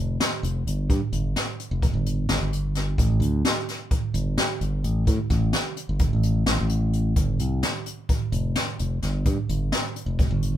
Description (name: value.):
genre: progressive instrumental, band music in an uneven meter.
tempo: 258 BPM (eighths).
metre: 9/8.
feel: straight.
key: unclear.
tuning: A4 = 438 Hz.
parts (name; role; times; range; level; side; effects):
modern bright fingered electric bass; bass; 0.0-10.6 s; F1 to A2; -24 LUFS; equal; none.
jazz brush drum kit; drums; 0.2-10.5 s; hi-hat, kick drum, snare drum; -24 LUFS; right 1 dB; none.
room: moderate small room ambience, RT60 0.5 s.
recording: band playing live in one room.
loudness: -22 LUFS.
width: side -11 dB against mid.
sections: 0.0-10.6 A section.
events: none.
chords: none.